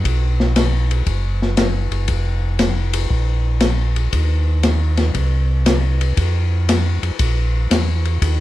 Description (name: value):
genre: soul jazz organ trio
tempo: 118 BPM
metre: 4/4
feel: swing 68% on 8ths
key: unclear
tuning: A4 = 440 Hz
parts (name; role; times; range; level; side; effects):
- mellow tonewheel organ; bass; 0.0-8.4 s; F1 to F2; -17 LUFS; equal; slow rotary speaker
- open jazz drum kit; drums; 0.1-8.4 s; hi-hat, kick drum, ride cymbal, snare drum; -20 LUFS; left 2 dB; none
room: little or no reverb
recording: dark, warm production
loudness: -15 LUFS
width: side -15 dB against mid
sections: 0.0-8.4 A section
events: none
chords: none